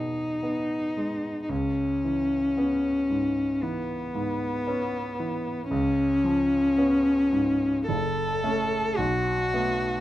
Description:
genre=classical, romantic duo for cello and grand piano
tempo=52-58 BPM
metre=4/4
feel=rubato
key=unclear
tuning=A4 = 438 Hz
part: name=dark cello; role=melody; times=0.0-10.0 s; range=B3 to A4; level=-24 LUFS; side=left 1 dB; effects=none
part: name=clear grand piano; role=accompaniment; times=0.0-10.0 s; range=F#1 to C#4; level=-30 LUFS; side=right 1 dB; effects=none
room=moderate studio ambience, RT60 0.5 s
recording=none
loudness=-23 LUFS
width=side -14 dB against mid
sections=0.0-10.0 A section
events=none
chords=0.0 E; 1.5 C#m7; 5.7 C#7; 7.9 F#m; 9.0 B5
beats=0.43 | 1.50 2.58 3.63 4.68 | 5.71 6.77 7.88 8.97

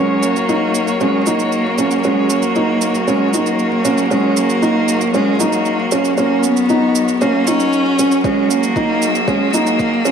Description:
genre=piano and strings electronica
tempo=116 BPM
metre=4/4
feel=straight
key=F# mixolydian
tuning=A4 = 440 Hz
part: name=rich cello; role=melody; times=0.0-10.1 s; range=G#3 to C#4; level=-17 LUFS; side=left 1 dB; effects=ping-pong delay
part: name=warm string quartet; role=sustained chords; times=0.0-10.1 s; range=F#3 to E6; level=-21 LUFS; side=left 1 dB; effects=low-pass filter
part: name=felt-muted upright piano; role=riff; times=0.0-10.1 s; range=C#4 to D#4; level=-17 LUFS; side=right 2 dB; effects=ping-pong delay
part: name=clear chamber double bass section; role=bass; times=0.0-10.1 s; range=F#1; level=-31 LUFS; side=right 2 dB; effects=none
part: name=shaker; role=drums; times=0.2-10.1 s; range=none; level=-26 LUFS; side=right 7 dB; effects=overdrive
part: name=electronic kick drum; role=drums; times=8.2-9.9 s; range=none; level=-25 LUFS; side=left 1 dB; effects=overdrive
room=wet echo chamber reverb, RT60 1.7 s, studio ambience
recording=dark, warm production, high-pass filter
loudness=-13 LUFS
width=side -7 dB against mid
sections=0.0-10.1 A section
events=build-up 0.0-10.1; filter sweep on string quartet 0.0-10.1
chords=0.0 F#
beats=0.49 1.01 1.52 | 2.04 2.56 3.08 3.59 | 4.11 4.63 5.14 5.66 | 6.18 6.70 7.21 7.73 | 8.25 8.77 9.28 9.80

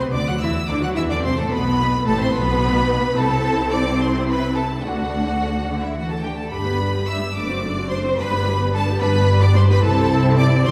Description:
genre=quick classical-period movement for string orchestra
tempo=72 BPM (dotted quarters)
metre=6/8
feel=straight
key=unclear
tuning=A4 = 440 Hz
part: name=rich studio violin section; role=melody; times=0.0-10.7 s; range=E5 to F#6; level=-28 LUFS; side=equal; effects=none
part: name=clear symphonic violin section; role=second line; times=0.0-10.7 s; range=E4 to F#5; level=-27 LUFS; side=equal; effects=none
part: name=warm symphonic viola section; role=accompaniment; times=0.0-10.7 s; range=G3 to G4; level=-26 LUFS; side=equal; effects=none
part: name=rich symphonic cello section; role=bass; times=0.0-10.7 s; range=F#2 to F#3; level=-25 LUFS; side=equal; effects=none
part: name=dark symphonic double bass section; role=bass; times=0.1-10.7 s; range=F#1 to E2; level=-25 LUFS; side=equal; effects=none
room=wet concert hall reverb, RT60 2.2 s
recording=heard from further back in the room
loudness=-20 LUFS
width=mono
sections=0.0-10.7 A section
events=none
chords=0.0 D9; 0.7 D7; 1.5 Amadd9; 3.2 Am/C; 4.8 D; 6.5 G; 7.4 D7/F#; 8.2 G; 9.8 Am/C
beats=0.69 | 1.51 2.34 | 3.16 3.99 | 4.83 5.67 | 6.52 7.36 | 8.19 9.01 | 9.84 10.67

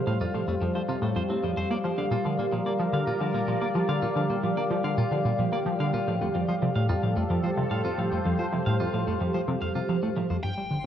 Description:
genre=ambient, sequencer-driven space music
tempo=110 BPM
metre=4/4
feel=straight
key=unclear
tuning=A4 = 441 Hz
part: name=sweeping resonant pad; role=sustained chords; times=0.0-10.9 s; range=G3 to F5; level=-28 LUFS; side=equal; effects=chorus
part: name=clean electric guitar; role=arpeggios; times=0.1-10.4 s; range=F3 to F5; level=-32 LUFS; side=right 2 dB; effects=auto-pan, ping-pong delay
part: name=tight sequenced synth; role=riff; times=0.1-10.8 s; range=F2 to Bb3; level=-28 LUFS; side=equal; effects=chorus, ping-pong delay
part: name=high-gain lead guitar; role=melody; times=10.4-10.9 s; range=G5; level=-33 LUFS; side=left 4 dB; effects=distortion
part: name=round analog bass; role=bass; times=10.4-10.9 s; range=G1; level=-52 LUFS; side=equal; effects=none
part: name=twinkling granular texture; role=texture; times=10.7-10.9 s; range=C5 to C6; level=-51 LUFS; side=right 1 dB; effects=built-in reverb
room=wet plate reverb, RT60 2.9 s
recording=worn, warbling old tape, cassette tape, warbly pitch drift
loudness=-24 LUFS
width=side -10 dB against mid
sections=0.0-10.4 A section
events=none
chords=0.0 F; 1.7 Bb; 6.1 F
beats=0.07 0.62 1.16 | 1.71 2.25 2.80 3.34 | 3.89 4.43 4.98 5.53 | 6.07 6.62 7.16 7.71 | 8.25 8.80 9.34 9.89 | 10.44

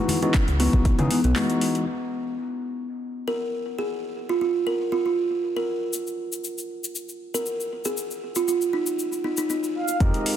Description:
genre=deep house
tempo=118 BPM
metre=4/4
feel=swing 53% on 16ths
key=unclear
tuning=A4 = 440 Hz
part: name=overdriven tine electric piano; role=stabs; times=0.0-1.8, 10.0-10.4 s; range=Fb3 to Bb4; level=-26 LUFS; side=left 1 dB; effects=sidechain pumping, analog delay
part: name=deep house drum kit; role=drums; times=0.1-1.8, 10.0-10.4 s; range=handclaps, hi-hat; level=-30 LUFS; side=left 1 dB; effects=overdrive, low-pass filter on hats, low-pass filter on snare, low-pass filter on room
part: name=congas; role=percussion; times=0.1-1.5 s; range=none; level=-29 LUFS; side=left 4 dB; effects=none
part: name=buzzing kalimba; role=melody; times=0.2-9.6 s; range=Cb4 to Bb4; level=-25 LUFS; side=right 1 dB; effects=analog delay
part: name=electronic kick drum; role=drums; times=0.3-1.0, 10.0-10.1 s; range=none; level=-22 LUFS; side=equal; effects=overdrive
part: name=round analog bass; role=bass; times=0.5-1.3, 10.0-10.1 s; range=Cb2 to Db3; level=-23 LUFS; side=equal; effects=tube saturation, sidechain pumping
part: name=cabasa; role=percussion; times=5.9-10.0 s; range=none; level=-32 LUFS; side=left 4 dB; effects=none
part: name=mellow horn-like synth lead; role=melody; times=9.8-10.4 s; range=Eb5 to F5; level=-28 LUFS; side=right 4 dB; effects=ensemble chorus, analog delay
room=light reverb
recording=dense, heavily limited modern master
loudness=-23 LUFS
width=side -10 dB against mid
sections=0.0-1.9 A section; 1.9-10.0 B section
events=filter sweep on tine electric piano 0.0-1.9; break 1.4-1.9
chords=0.0 Dbm11; 1.9 N.C.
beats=0.34 0.85 1.36 | 1.87 2.38 2.89 3.40 | 3.90 4.41 4.92 5.43 | 5.94 6.45 6.95 7.46 | 7.97 8.48 8.99 9.50 | 10.01

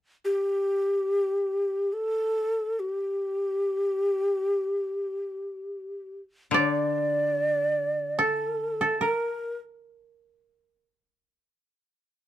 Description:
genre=japanese traditional, Japanese chamber music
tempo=free time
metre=none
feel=none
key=G hirajoshi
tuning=A4 = 440 Hz
part: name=breathy mellow shakuhachi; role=melody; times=0.2-9.6 s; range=G4 to D5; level=-26 LUFS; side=equal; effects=none
part: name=koto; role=second line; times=6.5-10.8 s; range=A4 to D5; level=-26 LUFS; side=right 2 dB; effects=none
part: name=koto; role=accompaniment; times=6.5-9.0 s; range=D3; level=-30 LUFS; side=left 7 dB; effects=none
room=light reverb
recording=dark, warm production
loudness=-25 LUFS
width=side -12 dB against mid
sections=0.0-6.5 A section; 6.5-12.3 B section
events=none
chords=none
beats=free time

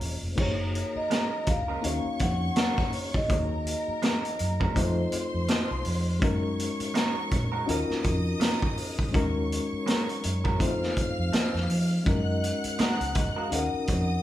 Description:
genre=lush 1970s-style soul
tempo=82 BPM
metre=4/4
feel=swing 58% on 16ths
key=unclear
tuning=A4 = 439 Hz
part: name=reed electric piano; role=accompaniment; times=0.0-14.2 s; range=Ab3 to Db5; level=-32 LUFS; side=left 3 dB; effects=medium tremolo
part: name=vintage muted fingered electric bass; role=bass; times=0.0-14.2 s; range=E1 to F3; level=-30 LUFS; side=equal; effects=none
part: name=vintage drum kit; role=drums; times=0.0-14.1 s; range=crash cymbal, hi-hat, kick drum, snare drum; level=-28 LUFS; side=equal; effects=none
part: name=vibraphone with soft mallets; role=melody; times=0.3-5.3, 12.1-14.2 s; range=C5 to Gb5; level=-33 LUFS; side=equal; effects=none
part: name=warm studio string section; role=second line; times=0.4-14.2 s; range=Bb4 to Gb6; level=-37 LUFS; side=left 2 dB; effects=none
part: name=electric guitar at the edge of break-up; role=riff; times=1.1-13.5 s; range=F3 to Bb4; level=-34 LUFS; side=right 4 dB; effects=none
room=wet large studio reverb, RT60 0.9 s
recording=band playing live in one room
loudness=-25 LUFS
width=side -13 dB against mid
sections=0.4-14.2 A section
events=none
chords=0.4 Gb69; 1.8 Ebm9; 3.3 Ab9sus4/Eb; 4.8 F7; 6.2 Gb69; 7.7 Ebm9; 9.1 Ab9sus4/Eb; 10.6 F7; 12.1 Gb69; 13.5 Ebm9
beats=| 0.38 1.11 1.84 2.57 | 3.30 4.03 4.76 5.49 | 6.22 6.95 7.68 8.41 | 9.14 9.87 10.60 11.33 | 12.06 12.79 13.52

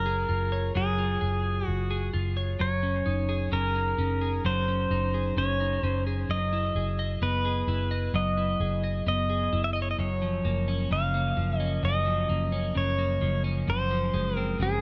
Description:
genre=dream pop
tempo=65 BPM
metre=4/4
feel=straight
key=Gb major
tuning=A4 = 437 Hz
part: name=pedal steel guitar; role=melody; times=0.0-14.8 s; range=Ab4 to F5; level=-32 LUFS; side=equal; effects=tape echo
part: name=clean electric guitar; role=arpeggios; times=0.0-14.8 s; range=Gb2 to D#5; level=-33 LUFS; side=equal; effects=analog chorus, tape echo
part: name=vintage muted picked electric bass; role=bass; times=0.0-14.8 s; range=Gb1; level=-31 LUFS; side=equal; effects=none
room=light reverb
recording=none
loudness=-28 LUFS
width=mono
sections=0.0-14.8 A section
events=none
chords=0.0 Db/Gb; 2.6 Ab7sus4/Gb; 6.3 Emaj7/Gb; 10.0 Gbmaj7; 13.7 Dbmaj7/Gb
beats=0.76 1.68 | 2.60 3.52 4.45 5.37 | 6.29 7.22 8.14 9.06 | 9.99 10.91 11.83 12.76 | 13.68 14.60

